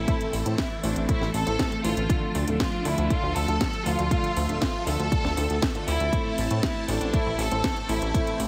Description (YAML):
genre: italo disco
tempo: 119 BPM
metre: 4/4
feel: straight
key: A minor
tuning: A4 = 441 Hz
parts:
  - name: rich studio violin section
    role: melody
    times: 0.0-8.4 s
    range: D4 to A4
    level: -32 LUFS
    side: equal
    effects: digital delay
  - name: phased string machine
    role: sustained chords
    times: 0.0-8.5 s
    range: E3 to E5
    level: -35 LUFS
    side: equal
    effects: ensemble chorus, phaser
  - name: chorused synth bass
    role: bass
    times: 0.0-8.5 s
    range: D1 to A2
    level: -30 LUFS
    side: equal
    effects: none
  - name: warm concert grand piano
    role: stabs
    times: 0.1-8.3 s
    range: A2 to A4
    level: -35 LUFS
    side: equal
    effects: none
  - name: electronic kick drum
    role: drums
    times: 0.1-8.2 s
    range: none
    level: -30 LUFS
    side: equal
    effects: studio reverb
  - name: house drum kit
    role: drums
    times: 0.1-8.5 s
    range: hi-hat, snare drum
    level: -34 LUFS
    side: equal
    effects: studio reverb
room: light reverb, digital ambience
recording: heavily compressed radio sound, faint mains hum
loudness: -26 LUFS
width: mono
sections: 0.0-8.5 A section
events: none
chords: 0.0 Am; 2.1 Dm; 6.1 Am